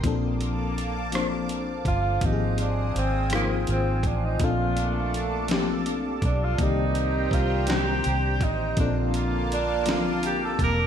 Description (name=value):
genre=slow six-eight R&B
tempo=55 BPM (dotted quarters)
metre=6/8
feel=straight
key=Bb major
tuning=A4 = 441 Hz
part: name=FM electric piano with soft pad layer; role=accompaniment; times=0.0-10.9 s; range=D3 to D5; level=-29 LUFS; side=left 5 dB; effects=chorus, tremolo
part: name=lush unison pad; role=sustained chords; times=0.0-10.9 s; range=Bb3 to Eb6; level=-34 LUFS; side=right 1 dB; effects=chorus, phaser
part: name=vintage muted fingered electric bass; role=bass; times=0.0-10.9 s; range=E1 to C2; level=-28 LUFS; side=right 1 dB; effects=none
part: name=dusty soul sampler-style drum kit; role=drums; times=0.0-10.8 s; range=hi-hat, kick drum, rim click, snare drum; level=-29 LUFS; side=right 1 dB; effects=none
part: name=breathy tenor saxophone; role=melody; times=1.9-10.9 s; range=Bb3 to Bb4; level=-28 LUFS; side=right 2 dB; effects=analog delay
part: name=mellow horn section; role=stabs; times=4.4-10.6 s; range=Bb2 to G4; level=-33 LUFS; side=right 3 dB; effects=analog delay
room=wet plate reverb, RT60 1.6 s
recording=dreamy mix soaked in reverb, faint mains hum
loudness=-22 LUFS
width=side -8 dB against mid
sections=0.0-10.9 A section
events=tenor saxophone solo 0.0-10.9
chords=0.0 Bbmaj7; 2.2 Ab6; 4.4 Bbmaj7; 6.6 Cm7; 8.8 Bbmaj7